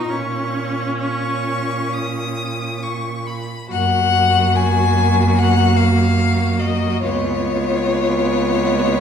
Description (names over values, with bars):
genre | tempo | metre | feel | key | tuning
classical, slow romantic movement for string quartet | 65-74 BPM | 4/4 | rubato | F# major | A4 = 440 Hz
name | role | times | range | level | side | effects
rich violin | melody | 0.0-9.0 s | C#5 to G#5 | -20 LUFS | left 7 dB | none
bright violin | second line | 0.0-9.0 s | E#4 to D#6 | -26 LUFS | left 3 dB | none
clear viola | accompaniment | 0.0-9.0 s | A#3 to D#4 | -22 LUFS | right 2 dB | none
rich cello | bass | 0.0-9.0 s | C#2 to A#2 | -20 LUFS | right 3 dB | none
room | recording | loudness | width
wet recital hall reverb, RT60 1.6 s | heard from further back in the room | -16 LUFS | side -8 dB against mid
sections
0.0-3.7 A section; 3.7-9.0 A section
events
none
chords
0.1 A#madd11; 3.7 F#; 7.0 C#7